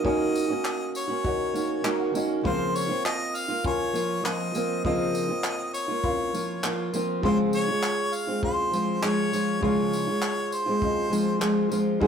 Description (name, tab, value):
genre	acoustic pop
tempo	100 BPM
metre	4/4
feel	straight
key	unclear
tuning	A4 = 441 Hz
part	clear harmonica	melody	0.0-12.1 s	C5 to F5	-30 LUFS	left 1 dB	none
part	fingerpicked steel-string acoustic guitar	accompaniment	0.0-12.1 s	Ab2 to Ab4	-26 LUFS	right 1 dB	none
part	warm upright piano	accompaniment	0.0-12.1 s	C4 to C6	-34 LUFS	left 4 dB	none
part	compact cocktail drum kit	drums	0.0-12.1 s	handclaps, kick drum, tambourine	-33 LUFS	equal	none
room	moderate stone room reverb, RT60 1.0 s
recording	rough rehearsal-room recording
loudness	-24 LUFS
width	side -7 dB against mid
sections	0.0-12.1 A section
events	upright piano fill 1.5-2.4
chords	0.0 Ebm7; 2.4 Bbmadd9/Db; 7.2 Dbmaj7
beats	| 0.04 0.64 1.24 1.84 | 2.44 3.04 3.64 4.24 | 4.84 5.44 6.04 6.64 | 7.24 7.83 8.43 9.03 | 9.62 10.22 10.82 11.42 | 12.01